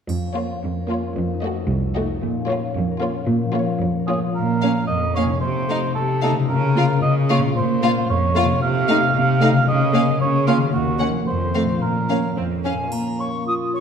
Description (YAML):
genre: cinematic, playful, whimsical film cue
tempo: 112 BPM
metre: 2/4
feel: straight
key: Bb minor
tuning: A4 = 440 Hz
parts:
  - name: concert harp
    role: arpeggios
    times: 0.1-13.8 s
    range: F2 to Eb5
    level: -23 LUFS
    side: left 7 dB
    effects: none
  - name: clear chamber cello section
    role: bass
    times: 0.1-12.8 s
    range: C2 to Db3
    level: -23 LUFS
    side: right 5 dB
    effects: none
  - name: triangle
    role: percussion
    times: 0.1-1.1, 12.9-13.8 s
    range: none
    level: -42 LUFS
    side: right 2 dB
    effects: none
  - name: rich studio violin section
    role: second line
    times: 0.3-12.7 s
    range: C4 to Gb4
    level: -29 LUFS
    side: left 2 dB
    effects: none
  - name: rich chamber violin section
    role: melody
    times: 0.4-12.7 s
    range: Db5 to Gb5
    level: -29 LUFS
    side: left 4 dB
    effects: none
  - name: rich chamber viola section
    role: accompaniment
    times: 0.4-12.7 s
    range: A3 to Db4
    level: -26 LUFS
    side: right 2 dB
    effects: none
  - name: mellow cor anglais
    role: second line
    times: 4.1-13.8 s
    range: F4 to F5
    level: -23 LUFS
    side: right 2 dB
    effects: none
  - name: silver concert flute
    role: second line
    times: 12.6-13.8 s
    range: Ab5 to Eb6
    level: -25 LUFS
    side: equal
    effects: none
  - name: mellow clarinet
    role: second line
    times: 12.9-13.8 s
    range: Bb3 to F4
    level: -25 LUFS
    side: equal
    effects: none
room: wet scoring stage reverb, RT60 1.5 s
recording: dark, warm production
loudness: -18 LUFS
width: side -7 dB against mid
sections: 0.1-4.4 A section; 4.4-12.9 B section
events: none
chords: 0.1 Bbm/F; 1.2 F7b9; 2.2 Bbm; 5.4 F7/C; 6.5 Bbm/Db; 7.6 Bbm; 8.6 F7/C; 9.7 Bbm/Db; 10.7 Ebm7; 11.3 F; 11.8 Bbm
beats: | 0.08 0.62 | 1.16 1.69 | 2.22 2.75 | 3.27 3.81 | 4.35 4.89 | 5.42 5.96 | 6.49 7.03 | 7.56 8.09 | 8.62 9.15 | 9.68 10.20 | 10.73 11.27 | 11.82 12.37 | 12.92 13.46